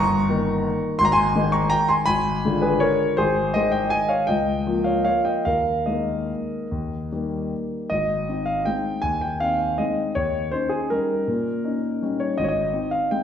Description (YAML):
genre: classical, piano waltz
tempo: 139-176 BPM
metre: 3/4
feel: rubato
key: Ab major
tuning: A4 = 440 Hz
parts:
  - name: warm concert grand piano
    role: solo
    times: 0.0-13.2 s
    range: G1 to Db6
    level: -20 LUFS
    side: left 1 dB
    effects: none
room: wet recital hall reverb, RT60 1.3 s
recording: heard from further back in the room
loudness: -20 LUFS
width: side -8 dB against mid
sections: 0.0-7.9 A section; 7.9-13.2 B section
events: none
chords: 0.0 Eb/G; 1.0 Ab; 2.1 Abdim7; 3.2 Ab; 4.3 Bbm/Db; 5.5 Ebsus4; 6.7 Eb; 7.9 Ab; 10.2 Eb7; 12.4 Ab